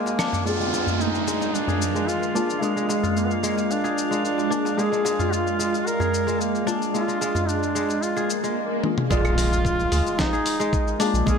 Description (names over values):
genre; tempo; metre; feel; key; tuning
organic downtempo; 111 BPM; 4/4; straight; unclear; A4 = 441 Hz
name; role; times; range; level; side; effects
warm duduk; melody; 0.0-11.4 s; Ab3 to Bb4; -26 LUFS; equal; ping-pong delay
kora; arpeggios; 0.0-11.4 s; Ab3 to Ab4; -28 LUFS; left 1 dB; low-pass filter, ping-pong delay
drifting glass-harmonics texture; texture; 0.0-8.6 s; F5 to Ab5; -36 LUFS; right 1 dB; chorus, built-in reverb
dusty soul sampler-style drum kit; drums; 0.1-11.4 s; claves, hi-hat, shaker, snare drum, toms; -30 LUFS; left 2 dB; none
darbuka; percussion; 0.1-8.5 s; none; -30 LUFS; equal; none
deep mellow chord stab; accompaniment; 0.4-11.4 s; Ab3 to F5; -29 LUFS; left 3 dB; chorus, phaser, cassette tape, sidechain pumping, ping-pong delay
ethereal airy pad; sustained chords; 1.5-11.4 s; Ab3 to D5; -30 LUFS; right 2 dB; ensemble chorus, built-in reverb, sidechain pumping
downlifter, swell and impact; sound effects; 0.5-11.3 s; none; -29 LUFS; right 2 dB; none
warm sub bass; bass; 9.1-11.4 s; Bb1 to D2; -23 LUFS; equal; sidechain pumping
electronic kick drum; drums; 9.1-11.4 s; none; -25 LUFS; equal; none
room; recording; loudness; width
moderate lush hall reverb, RT60 1.7 s; none; -21 LUFS; side -6 dB against mid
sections
0.5-9.1 A section; 9.1-11.4 B section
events
break 0.0-0.5; band accent 0.2; filter sweep on kora 0.5-9.1; swell 8.2-9.1; drum fill 8.8; impact 9.1-11.3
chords
0.5 Bb7